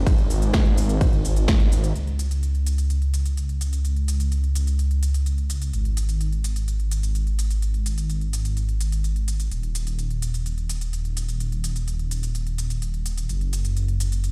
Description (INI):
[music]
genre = EDM, festival progressive house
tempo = 127 BPM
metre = 4/4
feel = straight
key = unclear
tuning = A4 = 439 Hz
[part]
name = detuned saw bass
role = bass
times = 0.0-14.3 s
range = Eb1 to Db2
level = -25 LUFS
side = equal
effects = chorus, sidechain pumping
[part]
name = big-room dance drum kit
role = drums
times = 0.1-14.3 s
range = hi-hat, ride cymbal, shaker, snare drum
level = -35 LUFS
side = equal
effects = none
[part]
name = electronic kick drum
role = drums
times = 0.1-1.6 s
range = none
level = -21 LUFS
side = equal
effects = overdrive
[sound]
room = little or no reverb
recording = played on a big sound system in a bare room, stone room reverb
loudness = -24 LUFS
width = mono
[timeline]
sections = 0.0-2.0 A section; 2.0-14.3 B section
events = drop 0.0-2.0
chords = none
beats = | 0.07 0.54 1.01 1.48 | 1.96 2.43 2.90 3.37 | 3.85 4.32 4.79 5.26 | 5.74 6.21 6.68 7.15 | 7.62 8.10 8.57 9.04 | 9.52 9.99 10.46 10.93 | 11.40 11.88 12.35 12.82 | 13.29 13.77 14.24